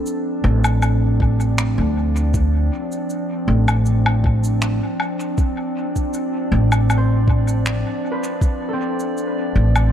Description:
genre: ambient dub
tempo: 79 BPM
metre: 4/4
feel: straight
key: D dorian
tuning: A4 = 440 Hz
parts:
  - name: warbly tape-like pad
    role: sustained chords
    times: 0.0-9.9 s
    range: F3 to D5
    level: -24 LUFS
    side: equal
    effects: chorus, built-in reverb
  - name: concert harp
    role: arpeggios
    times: 0.0-1.5, 7.0-9.9 s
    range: C4 to C5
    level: -31 LUFS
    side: right 2 dB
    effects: dub echo
  - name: electronic shaker, woodblock and finger snaps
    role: drums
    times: 0.1-9.9 s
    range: none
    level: -25 LUFS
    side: left 1 dB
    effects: dub echo
  - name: upright bass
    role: bass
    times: 0.4-9.9 s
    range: A1 to D2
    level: -16 LUFS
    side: equal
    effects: tube saturation
  - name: electronic kick drum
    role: drums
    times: 1.2-8.6 s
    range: none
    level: -19 LUFS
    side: equal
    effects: none
room: light reverb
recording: none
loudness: -17 LUFS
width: side -10 dB against mid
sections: 0.0-9.9 A section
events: none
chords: 0.0 Dm7

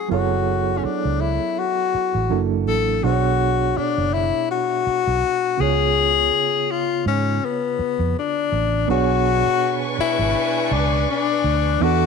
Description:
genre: R&B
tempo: 82 BPM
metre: 4/4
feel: swing 56% on 16ths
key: B dorian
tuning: A4 = 440 Hz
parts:
  - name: breathy tenor saxophone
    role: melody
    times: 0.0-12.1 s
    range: B3 to A4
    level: -20 LUFS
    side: left 9 dB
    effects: slapback echo
  - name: overdriven reed electric piano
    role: accompaniment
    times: 0.0-12.1 s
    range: B2 to C#5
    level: -25 LUFS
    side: right 17 dB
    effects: fast tremolo
  - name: vintage muted fingered electric bass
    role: bass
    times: 0.1-12.1 s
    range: F#1 to G#2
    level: -23 LUFS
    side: right 2 dB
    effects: none
  - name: warm symphonic string section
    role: sustained chords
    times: 8.9-12.1 s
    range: D4 to D6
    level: -26 LUFS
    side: right 1 dB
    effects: none
room: light reverb, small room ambience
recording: 1960s-style stereo with parts hard left and right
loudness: -18 LUFS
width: side -5 dB against mid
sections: 0.0-8.9 A section; 8.9-12.1 B section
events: none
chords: 0.0 F#m11; 2.3 F#7alt; 3.0 Bm69; 5.6 C#7; 8.9 Bm69

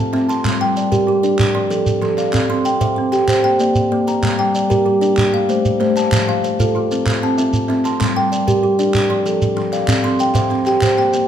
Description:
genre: southern african traditional, mbira-style interlocking cycle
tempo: 127 BPM (dotted quarters)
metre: 12/8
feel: straight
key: unclear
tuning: A4 = 440 Hz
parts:
  - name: kalimba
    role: arpeggios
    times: 0.0-11.3 s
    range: F3 to C6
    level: -16 LUFS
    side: left 1 dB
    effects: none
  - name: kalimba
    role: arpeggios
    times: 0.0-11.3 s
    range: F3 to A5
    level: -21 LUFS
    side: right 3 dB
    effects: none
  - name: group handclap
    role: percussion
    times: 0.1-11.1 s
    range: none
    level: -27 LUFS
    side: right 1 dB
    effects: none
  - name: shekere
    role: percussion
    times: 0.3-11.3 s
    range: none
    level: -22 LUFS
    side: right 2 dB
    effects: none
room: wet recital hall reverb, RT60 1.5 s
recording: minimal, uncompressed stereo recording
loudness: -14 LUFS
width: side -9 dB against mid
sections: 0.0-11.3 A section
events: none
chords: 0.5 Gm; 1.4 F; 2.3 C; 3.3 Bb; 4.2 Gm; 5.2 Am; 6.1 F; 7.1 C; 8.0 Gm; 8.9 F; 9.9 C

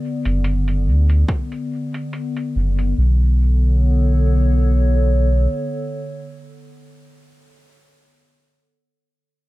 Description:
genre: ambient dub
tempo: 71 BPM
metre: 4/4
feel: swing 55% on 16ths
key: B minor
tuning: A4 = 440 Hz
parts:
  - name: warbly tape-like pad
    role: sustained chords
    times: 0.0-7.1 s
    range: D3 to D5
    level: -24 LUFS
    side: left 1 dB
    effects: chorus, built-in reverb
  - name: soft dub sub bass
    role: bass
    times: 0.3-5.5 s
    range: F#1 to D2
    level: -15 LUFS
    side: equal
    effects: tube saturation
  - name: electronic hi-hat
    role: drums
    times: 0.3-2.9 s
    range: none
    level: -38 LUFS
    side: right 1 dB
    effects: low-pass filter on hats, dub echo
  - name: electronic kick drum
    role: drums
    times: 1.3-1.5 s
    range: none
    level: -21 LUFS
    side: equal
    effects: none
room: little or no reverb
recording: dark, warm production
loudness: -16 LUFS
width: side -18 dB against mid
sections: 0.0-3.0 A section; 3.0-6.4 B section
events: none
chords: 0.0 Bm7; 3.0 Bm9

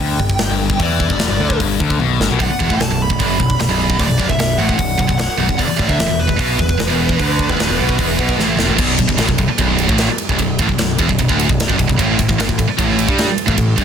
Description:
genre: heavy metal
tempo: 150 BPM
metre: 4/4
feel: straight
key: B minor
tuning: A4 = 440 Hz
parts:
  - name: high-gain lead guitar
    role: melody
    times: 0.0-8.4 s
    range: B4 to B5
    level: -22 LUFS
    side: equal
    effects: distortion
  - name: high-gain distorted guitar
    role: riff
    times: 0.0-13.8 s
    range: B1 to G3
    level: -20 LUFS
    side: left 10 dB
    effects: distortion
  - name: growling picked electric bass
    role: bass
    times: 0.0-13.8 s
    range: B0 to G2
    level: -20 LUFS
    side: equal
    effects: overdrive
  - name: tight metal drum kit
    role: drums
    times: 0.2-13.8 s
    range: crash cymbal, hi-hat, kick drum, ride cymbal, snare drum, toms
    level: -19 LUFS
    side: equal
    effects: soft clipping on kick
  - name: scooped high-gain guitar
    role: riff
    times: 2.4-13.8 s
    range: B1 to G3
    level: -19 LUFS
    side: right 9 dB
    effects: distortion
room: light reverb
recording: dense, heavily limited modern master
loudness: -13 LUFS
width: side -8 dB against mid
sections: 0.0-8.8 A section; 8.8-13.8 B section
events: drum fill 2.0-2.4, 8.4-8.8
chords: 0.0 G5; 2.4 B5; 5.6 E5; 8.8 Bm; 12.0 A5

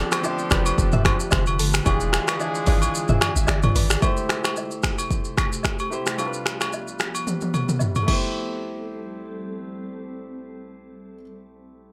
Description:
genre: afrobeats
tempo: 111 BPM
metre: 4/4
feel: swing 55% on 16ths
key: A minor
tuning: A4 = 435 Hz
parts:
  - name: mellow horn section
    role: second line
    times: 0.0-3.7 s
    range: D3 to G#4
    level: -36 LUFS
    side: equal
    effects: none
  - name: warm concert grand piano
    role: accompaniment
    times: 0.0-11.9 s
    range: E3 to G#5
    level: -32 LUFS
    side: equal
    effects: none
  - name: glassy FM pad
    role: sustained chords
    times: 0.0-11.2 s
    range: C3 to A4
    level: -37 LUFS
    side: equal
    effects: ensemble chorus, built-in reverb, phaser
  - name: direct-recorded clean electric guitar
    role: riff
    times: 0.0-4.0 s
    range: G4 to E5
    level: -36 LUFS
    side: equal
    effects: ensemble chorus, delay
  - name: punchy sub bass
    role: bass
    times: 0.0-4.0 s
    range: E1 to G#1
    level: -26 LUFS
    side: equal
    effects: none
  - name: deep house drum kit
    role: drums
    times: 0.1-8.2 s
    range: crash cymbal, finger snaps, hi-hat, kick drum, rim click, shaker, toms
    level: -25 LUFS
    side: equal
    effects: none
  - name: agogo bells and woodblock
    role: percussion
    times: 0.1-8.6 s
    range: none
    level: -32 LUFS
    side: equal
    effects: none
room: light reverb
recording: bright 1980s-style digital production, faint mains hum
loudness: -23 LUFS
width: mono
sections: 0.0-4.0 A section; 4.0-8.3 B section; 8.3-11.9 C section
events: kick muted 2.9-4.0; grand piano fill 2.9-4.0; drum fill 7.3-8.3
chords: 0.0 F69; 1.9 E7b9; 4.0 Am7; 6.2 G7; 8.1 Am7

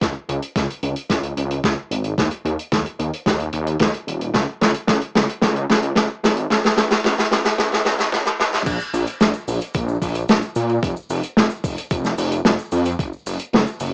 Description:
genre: synthwave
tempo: 111 BPM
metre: 4/4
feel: straight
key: unclear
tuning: A4 = 441 Hz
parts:
  - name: detuned saw bass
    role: bass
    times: 0.0-13.9 s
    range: Eb1 to Bb2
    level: -25 LUFS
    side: equal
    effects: chorus
  - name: electronic kick drum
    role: drums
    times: 0.0-13.1 s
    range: none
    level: -28 LUFS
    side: equal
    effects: overdrive, cassette tape
  - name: vintage drum kit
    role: drums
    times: 0.0-13.9 s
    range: cabasa, crash cymbal, hi-hat, snare drum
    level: -21 LUFS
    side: equal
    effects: cassette tape
room: wet booth ambience, RT60 0.3 s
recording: home recording on cassette, high-pass filter, small speaker sound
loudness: -20 LUFS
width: mono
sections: 0.0-8.7 A section; 8.7-13.9 B section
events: drum fill 0.0-8.7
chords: none

